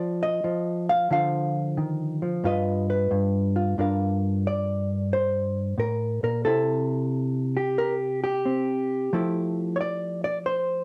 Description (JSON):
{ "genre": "solo jazz", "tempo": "90 BPM", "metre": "4/4", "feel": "swing 67% on 8ths", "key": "G dorian from 3.8 s", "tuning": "A4 = 441 Hz", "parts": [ { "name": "hollow-body jazz guitar", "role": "solo", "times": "0.0-10.8 s", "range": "G2 to F5", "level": "-26 LUFS", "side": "equal", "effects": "cassette tape" } ], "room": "moderate studio reverb, RT60 0.6 s", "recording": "home recording on cassette", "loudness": "-26 LUFS", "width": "mono", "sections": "0.0-3.8 A section; 3.8-10.8 B section", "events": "hollow-body jazz guitar solo 0.0-3.8", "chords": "0.0 N.C.; 1.1 Dm7; 2.4 G7b13; 3.8 Gm7; 6.4 C6; 9.1 Fmaj9" }